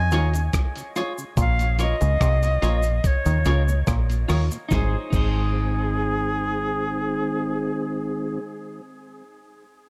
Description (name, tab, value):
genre	roots reggae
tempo	72 BPM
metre	4/4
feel	straight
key	Ab major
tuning	A4 = 440 Hz
part	bright reedy silver concert flute	melody	0.0-8.4 s	Ab4 to Ab5	-31 LUFS	equal	dub echo
part	muted clav	riff	0.0-4.4 s	Bb2 to Eb3	-32 LUFS	equal	overdrive
part	deep dub fingered electric bass	bass	0.0-8.4 s	Ab1 to F2	-24 LUFS	equal	none
part	clean electric guitar	accompaniment	0.1-8.7 s	Eb4 to Db5	-34 LUFS	equal	dub echo
part	mellow tonewheel organ	accompaniment	0.1-8.4 s	Bb2 to Db4	-32 LUFS	equal	chorus vibrato, slow rotary speaker, tape echo
part	dusty soul sampler-style drum kit	drums	0.1-5.4 s	crash cymbal, hi-hat, kick drum, rim click, snare drum	-28 LUFS	equal	none
part	cabasa	percussion	0.1-5.4 s	none	-43 LUFS	equal	none
room	light reverb, digital ambience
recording	echo-heavy mix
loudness	-23 LUFS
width	mono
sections	0.0-4.7 A section; 4.7-8.0 B section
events	none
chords	0.0 Db; 1.4 Bbm; 4.7 Ab